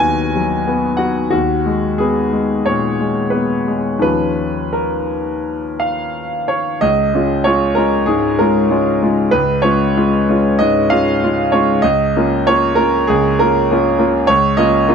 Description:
neoclassical minimalist piano; 81-101 BPM; 4/4; rubato; A4 = 440 Hz
bright grand piano; solo; 0.0-14.9 s; Db2 to Ab5; -13 LUFS; equal
little or no reverb; close, detailed microphones; -13 LUFS; side -6 dB against mid
0.0-6.8 A section; 6.8-14.9 B section
0.0 B/D#; 1.3 Abmadd9/Eb; 4.0 Bbm/Eb; 6.8 Db; 11.8 Bbm/Db
0.02 0.68 | 1.33 1.98 2.67 3.34 | 4.03 4.74 5.46 6.16 | 6.83 7.47 8.10 8.73 | 9.36 9.98 10.60 11.21 | 11.83 12.45 13.07 13.68 | 14.28 14.88

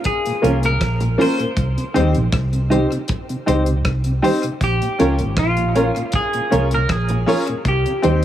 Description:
roots reggae; 79 BPM; 4/4; straight; Bb dorian; A4 = 437 Hz
damped 70s drum kit; drums; 0.0-8.2 s; hi-hat, kick drum, rim click; -24 LUFS; equal
semi-hollow electric guitar; melody; 0.1-8.2 s; F4 to C5; -23 LUFS; equal; wide subtle chorus, dub echo
mellow tonewheel organ; accompaniment; 0.3-8.1 s; Bb2 to Db4; -26 LUFS; right 1 dB; chorus vibrato, slow rotary speaker
clean electric guitar; accompaniment; 0.4-8.2 s; Db4 to C5; -26 LUFS; right 5 dB; vibrato effect, dub echo
warm baby grand piano; stabs; 0.4-8.2 s; Bb3 to Db5; -22 LUFS; left 3 dB
vintage muted fingered electric bass; bass; 0.4-8.2 s; Ab1 to Eb2; -19 LUFS; equal
light reverb, small room ambience; -16 LUFS; side -11 dB against mid
0.0-8.2 A section
0.0 Bbm; 1.6 Cm; 4.6 Bbm; 7.7 Cm
0.05 0.81 | 1.57 2.33 3.09 3.85 | 4.61 5.37 6.13 6.89 | 7.65

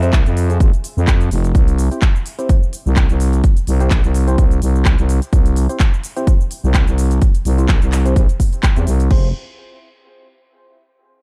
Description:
bass house; 127 BPM; 4/4; swing 55% on 16ths; F harmonic minor; A4 = 441 Hz
percussive organ stab; stabs; 0.0-9.3 s; C4 to C5; -30 LUFS; equal; subtle chorus, sidechain pumping, dub echo
growling FM bass; bass; 0.0-9.3 s; F1 to F2; -17 LUFS; equal; overdrive, sidechain pumping
house drum kit; drums; 0.0-9.2 s; cabasa, crash cymbal, handclaps, hi-hat; -28 LUFS; equal; studio reverb
electronic kick drum; drums; 0.1-9.2 s; -16 LUFS; equal; studio reverb
digital ambience; dark, warm production; -15 LUFS; mono
0.0-9.1 A section; 9.1-11.0 B section
filter sweep on FM bass 0.0-9.1
0.0 Fm; 1.5 C; 9.1 Fm
0.13 0.60 1.07 | 1.55 2.02 2.49 2.96 | 3.44 3.91 4.38 4.86 | 5.33 5.80 6.27 6.74 | 7.22 7.69 8.16 8.63 | 9.11

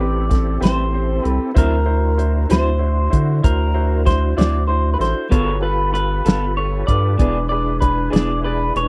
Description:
slow blues; 64 BPM (dotted quarters); 12/8; straight; A4 = 440 Hz
electric guitar through a small old amp; melody; 0.0-8.9 s; Bb4 to D5; -25 LUFS; equal; phaser
clear baby grand piano; accompaniment; 0.0-8.9 s; C4 to D5; -28 LUFS; equal
tonewheel organ; sustained chords; 0.0-8.9 s; C4 to C5; -31 LUFS; equal; slow rotary speaker, chorus vibrato
saturated sub bass; bass; 0.0-8.9 s; E1 to D3; -22 LUFS; equal
warm soul drum kit; drums; 0.3-8.9 s; hi-hat, kick drum, snare drum; -19 LUFS; equal
electric guitar through a small old amp; accompaniment; 0.6-8.3 s; A2 to A4; -27 LUFS; equal; harmonic tremolo
studio reverb; dry, close 1970s-style studio recording; -18 LUFS; mono
0.0-8.9 A section
0.0 Am7; 1.6 D9; 5.3 G9; 7.2 E7
0.62 | 1.56 2.50 3.44 4.38 | 5.32 6.26 7.20 8.13

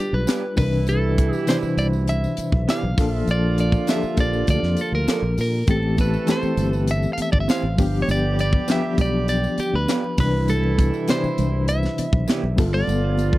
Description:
lush 1970s-style soul; 100 BPM; 4/4; straight; A4 = 439 Hz
clean electric guitar; melody; 0.0-13.4 s; G4 to F5; -26 LUFS; equal; warbly pitch drift, tape echo
reed electric piano; accompaniment; 0.0-13.4 s; C3 to C5; -25 LUFS; left 3 dB; fast tremolo
mellow horn section; stabs; 0.0-13.4 s; B2 to A4; -30 LUFS; right 7 dB
fingered electric bass; bass; 0.1-13.4 s; G1 to Bb2; -22 LUFS; equal
electric guitar through a small old amp; riff; 0.3-12.4 s; Bb3 to D5; -32 LUFS; right 6 dB; spring reverb
tight funk drum kit; drums; 0.3-13.4 s; hi-hat, kick drum, snare drum; -21 LUFS; equal
tambourine; percussion; 0.3-13.3 s; -42 LUFS; left 7 dB
congas; percussion; 5.7-13.3 s; -32 LUFS; right 6 dB
little or no reverb; dry, close 1970s-style studio recording; -18 LUFS; side -17 dB against mid
0.0-13.4 A section
0.0 G7; 0.6 Cmaj9; 3.0 Bbmaj7; 5.7 Am7; 7.8 G7; 10.2 Cmaj9; 12.6 G9
0.28 | 0.88 1.48 2.08 2.68 | 3.28 3.88 4.48 5.08 | 5.68 6.28 6.88 7.48 | 8.08 8.68 9.28 9.88 | 10.48 11.08 11.68 12.28 | 12.88

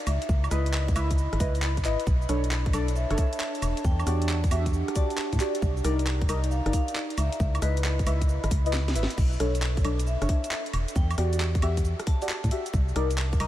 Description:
UK garage, two-step garage; 135 BPM; 4/4; swing 67% on 16ths; B minor; A4 = 441 Hz
garage drum kit; drums; 0.0-13.5 s; cabasa, crash cymbal, handclaps, hi-hat, rim click, snare drum, woodblock; -34 LUFS; right 1 dB
warbly tape-like pad; texture; 0.0-9.2 s; D4 to B5; -36 LUFS; right 2 dB; chorus, built-in reverb, sidechain pumping
vibraphone with hard mallets; melody; 0.1-12.5 s; B4 to A5; -39 LUFS; left 1 dB; analog delay
organ-like FM bass; bass; 0.1-13.5 s; E1 to A2; -26 LUFS; equal
electronic kick drum; drums; 0.3-13.4 s; -26 LUFS; equal
deep mellow chord stab; stabs; 0.5-13.5 s; D4 to E5; -32 LUFS; left 1 dB; chorus, phaser, cassette tape, analog delay
light reverb; -24 LUFS; side -13 dB against mid
0.0-9.2 A section; 9.2-13.5 A section
drop 0.0-9.2, 9.2-13.5; kick drops out 8.7-9.2; drum fill 8.7-9.2
0.1 C#m9; 2.1 Bm9; 3.6 Em9; 5.6 Cm9; 7.2 C#m9; 9.2 Bm9; 10.7 Em9; 12.7 Cm9
| 0.29 0.73 1.18 1.62 | 2.07 2.51 2.96 3.40 | 3.85 4.29 4.74 5.18 | 5.62 6.07 6.51 6.96 | 7.40 7.85 8.29 8.73 | 9.18 9.62 10.07 10.51 | 10.96 11.40 11.85 12.29 | 12.73 13.18

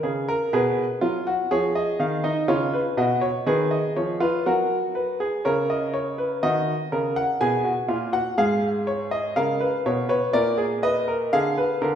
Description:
classical, baroque-style 3-part fugue for grand piano; 61 BPM; 4/4; straight; Eb minor from 6.4 s; A4 = 440 Hz
clear baby grand piano; solo; 0.0-12.0 s; Ab2 to Ab5; -21 LUFS; equal
wet recital hall reverb, RT60 1.6 s; recorded in a church or concert hall; -21 LUFS; side -9 dB against mid
0.0-6.4 A section; 6.4-12.0 B section
0.0 F# (rootless); 0.5 G#m/B; 4.5 F#; 6.4 Ebm; 8.4 Fdim/Ab; 10.3 Bb7
0.52 1.50 | 2.48 3.46 4.45 5.44 | 6.43 7.41 8.39 9.36 | 10.34 11.32

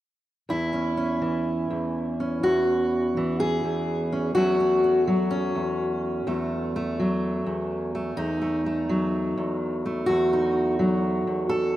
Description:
folk, solo fingerstyle acoustic guitar; 63 BPM; 4/4; straight; E major; A4 = 441 Hz
fingerpicked steel-string acoustic guitar; solo; 0.5-11.8 s; E2 to A4; -22 LUFS; equal
moderate lush hall reverb, RT60 2.8 s; rough home demo mix; -22 LUFS; side -14 dB against mid
0.5-11.8 A section
0.5 E69; 4.3 F#m/E; 8.2 Esus24
| 0.48 1.46 2.43 3.39 | 4.35 5.31 6.26 7.22 | 8.17 9.13 10.09 11.04

